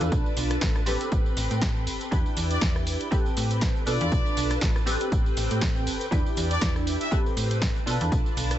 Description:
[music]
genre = filtered disco house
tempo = 120 BPM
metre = 4/4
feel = swing 56% on 16ths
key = A minor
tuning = A4 = 439 Hz
[part]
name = funky polysynth comp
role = accompaniment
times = 0.0-8.6 s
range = C4 to B4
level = -31 LUFS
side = equal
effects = chorus, phaser, sidechain pumping
[part]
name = string machine, full ensemble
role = sustained chords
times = 0.0-8.6 s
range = C4 to A5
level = -36 LUFS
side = equal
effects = ensemble chorus, vintage 12-bit sampler grit, sidechain pumping
[part]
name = slap-like FM bass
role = bass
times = 0.0-8.6 s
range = G1 to B2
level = -28 LUFS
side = equal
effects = tube saturation, sidechain pumping
[part]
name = punchy analog drum machine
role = drums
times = 0.0-8.6 s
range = hi-hat, rim click, snare drum, tambourine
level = -32 LUFS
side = equal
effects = sidechain pumping on hats, sidechain pumping on perc
[part]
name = electronic kick drum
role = drums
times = 0.1-8.2 s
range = none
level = -26 LUFS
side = equal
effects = none
[part]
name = egg shaker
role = percussion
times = 2.1-8.6 s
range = none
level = -51 LUFS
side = left 1 dB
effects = none
[part]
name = brilliant trumpet section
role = melody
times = 2.5-7.2 s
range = D5 to E5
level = -33 LUFS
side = left 1 dB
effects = vintage 12-bit sampler grit, sidechain pumping, dub echo
[sound]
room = little or no reverb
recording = nothing above 8.0 kHz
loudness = -23 LUFS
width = side -12 dB against mid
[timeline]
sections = 0.0-8.6 A section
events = none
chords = 0.0 Bm7b5; 0.9 Am9; 2.1 Em7; 3.1 Am9; 3.9 Bm7b5; 4.9 Am9; 6.1 Em7; 7.1 Am9; 7.9 Bm7b5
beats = | 0.12 0.62 1.12 1.62 | 2.12 2.62 3.12 3.62 | 4.12 4.62 5.12 5.62 | 6.12 6.62 7.12 7.62 | 8.12

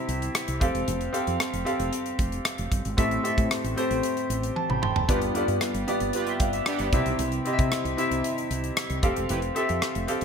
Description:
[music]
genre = 1980s-style pop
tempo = 114 BPM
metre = 4/4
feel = straight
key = unclear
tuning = A4 = 436 Hz
[part]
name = clear grand piano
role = accompaniment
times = 0.0-10.2 s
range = G2 to C6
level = -26 LUFS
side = equal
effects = lush chorus
[part]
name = woody fretless electric bass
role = bass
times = 0.1-10.2 s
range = E1 to C3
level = -30 LUFS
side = right 1 dB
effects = wide subtle chorus
[part]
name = modern studio drum kit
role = drums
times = 0.1-10.2 s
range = hi-hat, kick drum, rim click, toms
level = -29 LUFS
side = equal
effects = none
[part]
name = analog synth brass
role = stabs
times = 5.1-9.7 s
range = B3 to B4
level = -33 LUFS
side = right 2 dB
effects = chorus, ping-pong delay
[sound]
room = moderate plate reverb, RT60 2.0 s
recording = bright 1980s-style digital production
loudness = -24 LUFS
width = side -6 dB against mid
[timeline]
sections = 0.0-10.2 A section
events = grand piano fill 4.3-5.1; drum fill 4.6-5.1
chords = 0.0 C; 0.6 Fadd9; 3.0 Am7; 5.1 G7; 6.9 C; 9.0 Fadd9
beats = 0.35 | 0.87 1.40 1.93 2.45 | 2.98 3.50 4.03 4.56 | 5.08 5.61 6.14 6.66 | 7.19 7.72 8.24 8.77 | 9.29 9.82

